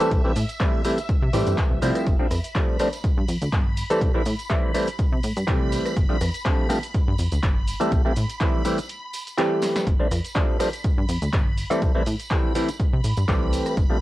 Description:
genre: filtered disco house.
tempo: 123 BPM.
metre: 4/4.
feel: swing 54% on 16ths.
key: unclear.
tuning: A4 = 440 Hz.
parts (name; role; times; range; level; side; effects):
mellow clav; accompaniment; 0.0-14.0 s; E3 to A4; -23 LUFS; equal; phaser, sidechain pumping.
phased string machine; sustained chords; 0.0-14.0 s; E5 to B5; -36 LUFS; left 1 dB; ensemble chorus, phaser, sidechain pumping.
punchy analog drum machine; drums; 0.0-13.9 s; handclaps, hi-hat, rim click, shaker, snare drum; -32 LUFS; equal; sidechain pumping on hats, cassette tape, sidechain pumping on cymbals, sidechain pumping on perc.
tambourine; percussion; 0.0-13.9 s; none; -42 LUFS; right 3 dB; sidechain pumping on perc.
plucky analog bass; bass; 0.1-13.9 s; G1 to C3; -25 LUFS; equal; sidechain pumping.
electronic kick drum; drums; 0.1-13.9 s; none; -23 LUFS; equal; cassette tape.
room: little or no reverb.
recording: home recording on cassette.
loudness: -20 LUFS.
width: side -16 dB against mid.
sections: 0.0-14.0 A section.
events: break 8.9-9.9; drum fill 9.6.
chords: 0.1 C6; 2.1 G9sus4; 4.0 C6; 6.0 G9sus4; 7.9 C6; 9.9 G9sus4; 11.8 C6.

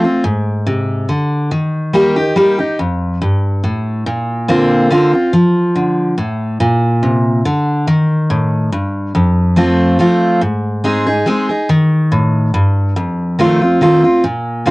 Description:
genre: bluegrass.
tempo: 141 BPM.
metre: 3/4.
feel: swing 53% on 8ths.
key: unclear.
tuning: A4 = 440 Hz.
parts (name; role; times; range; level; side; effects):
picked steel-string acoustic guitar; solo; 0.0-14.7 s; F2 to Ab4; -12 LUFS; equal; none.
room: moderate booth ambience, RT60 0.2 s.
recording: home recording on cassette.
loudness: -12 LUFS.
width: side -22 dB against mid.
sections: 0.0-5.3 A section; 5.3-14.7 A section.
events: none.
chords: 0.2 Ab; 1.5 Eb; 2.8 F; 4.1 Bbadd9; 5.3 Dm; 6.6 Bb; 7.9 Eb; 9.1 F; 10.4 Ab; 11.7 Eb; 13.0 F7.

